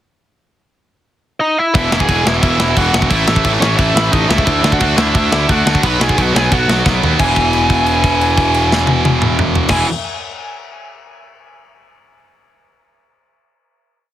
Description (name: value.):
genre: punk rock.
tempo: 176 BPM.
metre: 4/4.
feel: straight.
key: E major.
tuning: A4 = 440 Hz.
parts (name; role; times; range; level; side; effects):
smooth overdriven lead guitar; melody; 1.4-9.8 s; C#4 to B5; -18 LUFS; equal; tape echo.
tight distorted guitar; riff; 1.7-9.9 s; E2 to D4; -16 LUFS; right 1 dB; distortion.
fuzz picked electric bass; bass; 1.7-9.8 s; E1 to D#2; -18 LUFS; equal; overdrive.
tight metal drum kit; drums; 1.7-9.8 s; crash cymbal, kick drum, snare drum, toms; -17 LUFS; equal; none.
room: little or no reverb.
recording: heavily compressed radio sound, multiband compression.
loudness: -11 LUFS.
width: side -12 dB against mid.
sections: 0.4-1.7 pickup bar; 1.7-7.2 riff; 7.2-9.9 final chord.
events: drum fill 6.8-7.2; held note 7.2-9.7.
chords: 0.4 N.C.; 1.7 E; 3.1 A; 4.5 D; 5.8 B5; 7.2 E.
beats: | 0.37 0.71 1.05 1.40 | 1.74 2.08 2.42 2.77 | 3.11 3.45 3.79 4.13 | 4.47 4.81 5.15 5.49 | 5.83 6.17 6.50 6.84 | 7.18 7.52 7.86 8.20 | 8.54 8.88 9.22 9.56.